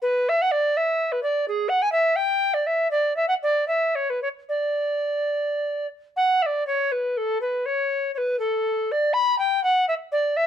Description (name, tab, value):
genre	classical, baroque-style fantasia for unaccompanied recorder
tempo	70-86 BPM (dotted quarters)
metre	6/8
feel	rubato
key	D major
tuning	A4 = 441 Hz
part	tenor recorder	solo	0.0-10.5 s	G#4 to B5	-21 LUFS	equal	none
room	light reverb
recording	dark, warm production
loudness	-21 LUFS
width	side -9 dB against mid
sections	0.0-6.2 A section; 6.2-10.5 B section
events	none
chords	none